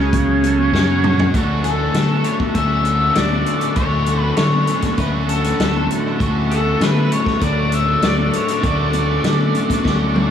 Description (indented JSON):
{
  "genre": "psychedelic rock",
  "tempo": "99 BPM",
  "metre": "4/4",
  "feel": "straight",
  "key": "D major",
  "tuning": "A4 = 440 Hz",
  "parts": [
    { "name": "combo organ", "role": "sustained chords", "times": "0.0-10.3 s", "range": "C#3 to F#5", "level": "-25 LUFS", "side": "right 4 dB", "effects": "none" },
    { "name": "biting overdriven guitar", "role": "riff", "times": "0.0-10.3 s", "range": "D2 to F#4", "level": "-21 LUFS", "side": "left 1 dB", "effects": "flanger, tape echo" },
    { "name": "fingered electric bass", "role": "bass", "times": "0.0-10.3 s", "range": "C#2 to D3", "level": "-19 LUFS", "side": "left 1 dB", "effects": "none" },
    { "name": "vintage drum kit", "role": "drums", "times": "0.1-10.3 s", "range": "hi-hat, kick drum, snare drum, toms", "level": "-22 LUFS", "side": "left 1 dB", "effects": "tape echo" },
    { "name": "congas", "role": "percussion", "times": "0.1-10.0 s", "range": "none", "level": "-29 LUFS", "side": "left 12 dB", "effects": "none" },
    { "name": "octave-fuzz lead guitar", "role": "melody", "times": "1.6-10.3 s", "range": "A4 to E5", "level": "-21 LUFS", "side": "left 2 dB", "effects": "distortion, tape echo" }
  ],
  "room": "light reverb, small room ambience",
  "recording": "echo-heavy mix",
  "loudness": "-15 LUFS",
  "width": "side -8 dB against mid",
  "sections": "0.0-1.3 A section; 1.3-10.3 B section",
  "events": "transistor combo organ solo 0.0-1.3; drum fill 0.7-1.3, 9.8-10.3",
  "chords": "0.0 F#5; 1.3 Dmaj7"
}